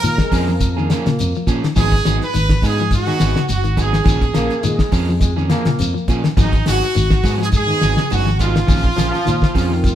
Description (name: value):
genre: afrobeat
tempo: 104 BPM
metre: 4/4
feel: swing 55% on 16ths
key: G# dorian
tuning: A4 = 441 Hz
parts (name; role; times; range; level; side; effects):
- bright horn section; melody; 0.0-9.9 s; D#4 to B4; -22 LUFS; right 2 dB; none
- brilliant trumpet; second line; 0.0-9.9 s; D#4 to B4; -26 LUFS; right 4 dB; none
- dark trombone section; second line; 0.0-9.9 s; D#3 to A#3; -25 LUFS; left 1 dB; none
- semi-hollow electric guitar; arpeggios; 0.0-9.9 s; C#3 to F#3; -24 LUFS; left 4 dB; spring reverb
- fingered electric bass; bass; 0.0-9.9 s; F#1 to A#2; -20 LUFS; equal; none
- damped 70s drum kit; drums; 0.0-9.9 s; hi-hat, kick drum, snare drum; -18 LUFS; equal; none
- shekere; percussion; 0.0-9.9 s; none; -26 LUFS; left 2 dB; none
- electric guitar at the edge of break-up; stabs; 0.3-9.7 s; E#3 to G#4; -25 LUFS; right 4 dB; none
room: moderate stone room reverb, RT60 1.1 s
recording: band playing live in one room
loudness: -14 LUFS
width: side -11 dB against mid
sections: 0.0-9.9 A section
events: none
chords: 0.0 A#m7; 1.8 G#m7; 4.1 A#m7; 6.4 G#m7; 8.7 A#m7